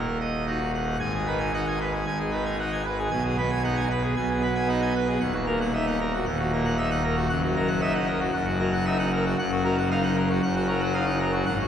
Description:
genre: classical, organ toccata.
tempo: 115 BPM.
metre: 4/4.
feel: straight.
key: G# minor.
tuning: A4 = 439 Hz.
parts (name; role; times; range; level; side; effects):
pipe organ, full organ; solo; 0.0-11.7 s; Eb1 to G#5; -23 LUFS; equal; none.
room: wet cathedral reverb, RT60 5.3 s.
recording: heard from further back in the room.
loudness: -23 LUFS.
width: side -8 dB against mid.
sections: 0.0-1.0 A section; 1.0-11.7 B section.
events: none.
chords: 0.0 Ebm; 1.0 G#m; 3.1 G#m/B; 5.2 D#m; 7.3 D#m/F#; 9.4 Ebm/Gb.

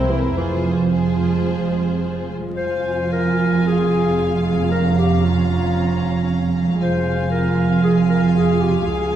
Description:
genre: classical, dramatic, fast romantic movement for symphony orchestra.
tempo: 108-118 BPM.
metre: 4/4.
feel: rubato.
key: F minor.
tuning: A4 = 440 Hz.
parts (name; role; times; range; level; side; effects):
clear symphonic violin section; melody; 0.0-9.2 s; C5 to Bb5; -32 LUFS; left 4 dB; none.
rich symphonic violin section; second line; 0.0-9.2 s; Ab4 to F5; -30 LUFS; left 6 dB; none.
mellow bassoon; accompaniment; 0.0-2.3 s; E3 to C4; -26 LUFS; equal; none.
rich symphonic viola section; accompaniment; 0.0-9.2 s; Db4 to F4; -30 LUFS; equal; none.
concert harp; arpeggios; 0.0-9.2 s; C3 to Db5; -25 LUFS; right 1 dB; none.
rich symphonic double bass section; bass; 0.0-9.2 s; F1 to Db2; -22 LUFS; right 4 dB; none.
warm symphonic cello section; bass; 0.0-9.2 s; Db2 to C3; -22 LUFS; right 3 dB; none.
mellow clarinet; second line; 2.6-9.2 s; F4 to C5; -23 LUFS; left 2 dB; none.
room: wet scoring stage reverb, RT60 1.8 s.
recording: vinyl crackle, small room reverb.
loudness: -16 LUFS.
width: side -10 dB against mid.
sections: 0.0-2.6 A section; 2.6-9.2 B section.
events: none.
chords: 0.4 Fm; 4.7 Bbm/F; 6.8 Fm.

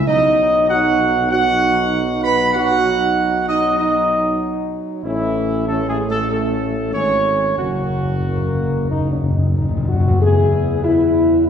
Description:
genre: classical.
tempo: 96 BPM.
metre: 4/4.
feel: straight.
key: B major.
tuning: A4 = 440 Hz.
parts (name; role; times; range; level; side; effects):
dark trumpet section; melody; 0.0-11.5 s; E4 to B5; -19 LUFS; right 1 dB; none.
mellow French horn section; sustained chords; 0.0-11.5 s; F#3 to G#4; -21 LUFS; left 2 dB; none.
mellow tuba; bass; 0.0-11.5 s; F#1 to E2; -23 LUFS; right 1 dB; none.
dark trombone section; sustained chords; 0.1-11.5 s; B2 to B4; -24 LUFS; right 4 dB; none.
timpani; percussion; 7.6-10.2 s; F#2; -19 LUFS; left 1 dB; none.
room: wet recital hall reverb, RT60 1.6 s.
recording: recorded in a church or concert hall.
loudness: -15 LUFS.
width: side -8 dB against mid.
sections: 0.0-10.2 A section; 10.2-11.5 B section.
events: timpani fill 7.6-10.2.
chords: 0.1 B; 5.0 A; 7.6 F#; 10.2 E.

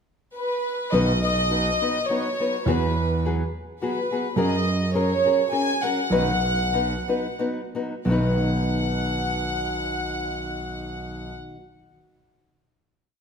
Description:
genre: mexican folk, mariachi.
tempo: 87-107 BPM.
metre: 3/4.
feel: swing 53% on 8ths, rubato.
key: B major.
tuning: A4 = 439 Hz.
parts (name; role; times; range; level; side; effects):
warm symphonic violin section; melody; 0.4-11.3 s; B4 to G#5; -25 LUFS; equal; none.
nylon-string guitar; accompaniment; 0.9-11.6 s; B2 to B4; -26 LUFS; left 2 dB; none.
dark concert grand piano; bass; 0.9-11.3 s; B1 to F#2; -26 LUFS; right 2 dB; none.
room: moderate recital hall reverb, RT60 1.8 s.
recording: none.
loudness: -21 LUFS.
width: side -6 dB against mid.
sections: 0.0-0.9 pickup bar; 0.9-8.1 A section; 8.1-12.1 final chord.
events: slowing down 4.4-8.1.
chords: 0.0 N.C.; 0.9 B; 2.7 Eadd9; 4.4 F#add9; 6.1 B.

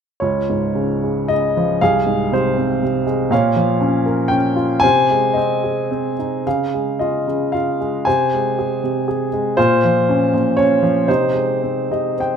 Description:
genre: classical, lyrical solo piano.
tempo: 105-123 BPM.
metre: 3/4.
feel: rubato.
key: Ab major.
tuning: A4 = 440 Hz.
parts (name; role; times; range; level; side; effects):
clear upright piano; solo; 0.2-12.4 s; C2 to Ab5; -15 LUFS; equal; none.
room: moderate recital hall reverb, RT60 1.6 s.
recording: minimal, uncompressed stereo recording.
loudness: -15 LUFS.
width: side -7 dB against mid.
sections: 0.2-12.4 A section.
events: none.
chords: 0.2 Dbadd9; 1.8 Fm/C; 3.3 Bbm; 4.8 Ab/C; 6.5 Dbadd9; 8.1 Ab/C; 9.6 Bbm; 11.1 Ab/C.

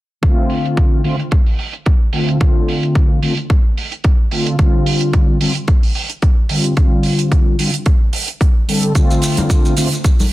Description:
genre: nu-disco, nu disco.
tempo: 110 BPM.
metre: 4/4.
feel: swing 55% on 16ths.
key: D minor.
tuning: A4 = 440 Hz.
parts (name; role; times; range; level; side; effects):
mellow synth brass; accompaniment; 0.2-9.9 s; D3 to A4; -17 LUFS; equal; chorus, slapback echo.
electronic kick drum; drums; 0.2-10.2 s; none; -13 LUFS; equal; overdrive.
hi-hat; drums; 0.2-10.3 s; none; -23 LUFS; right 5 dB; low-pass filter on hats, low-pass filter on room.
maracas and congas; percussion; 9.0-10.3 s; none; -22 LUFS; left 1 dB; none.
room: light reverb, small room ambience.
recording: dense, heavily limited modern master.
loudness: -13 LUFS.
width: side -17 dB against mid.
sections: 0.2-10.3 A section.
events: none.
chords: 0.2 Dm7; 4.6 G7sus4; 9.0 Dm7.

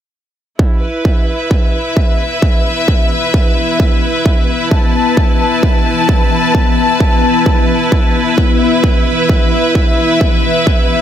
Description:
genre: driving peak-time techno.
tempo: 131 BPM.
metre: 4/4.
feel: straight.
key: unclear.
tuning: A4 = 440 Hz.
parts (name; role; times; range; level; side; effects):
deep dark ambient pad; drone; 2.2-11.0 s; E3 to B3; -18 LUFS; left 4 dB; chorus, built-in reverb, sidechain pumping.
electronic kick drum; drums; 0.6-10.8 s; none; -12 LUFS; equal; distortion.
clear studio string section; texture; 0.6-11.0 s; E4 to A5; -14 LUFS; equal; sidechain pumping.
room: light reverb.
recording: none.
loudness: -10 LUFS.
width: side -10 dB against mid.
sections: 0.6-11.0 A section.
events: none.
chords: 0.6 E5.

